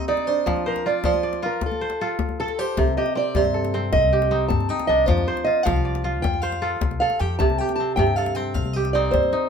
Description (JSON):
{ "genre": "west african traditional, West African string and xylophone music", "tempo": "104 BPM (dotted quarters)", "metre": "12/8", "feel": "straight", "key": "C dorian", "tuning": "A4 = 441 Hz", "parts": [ { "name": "fingerpicked steel-string acoustic guitar", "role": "melody", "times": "0.0-9.5 s", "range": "A4 to A5", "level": "-23 LUFS", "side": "right 2 dB", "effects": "none" }, { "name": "kora", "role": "arpeggios", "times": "0.0-9.5 s", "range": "C3 to D5", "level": "-25 LUFS", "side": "right 1 dB", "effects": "none" }, { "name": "djembe", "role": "percussion", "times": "0.1-9.4 s", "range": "none", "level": "-27 LUFS", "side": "left 5 dB", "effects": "none" }, { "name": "upright bass", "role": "bass", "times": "2.8-9.3 s", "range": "C2 to G2", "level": "-25 LUFS", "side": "left 1 dB", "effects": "none" } ], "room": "moderate small room reverb, RT60 0.5 s", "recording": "minimal, uncompressed stereo recording", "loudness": "-19 LUFS", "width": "side -7 dB against mid", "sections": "0.0-9.5 A section", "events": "steel-string acoustic guitar solo 0.0-9.5", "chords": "0.5 F; 2.8 Cm" }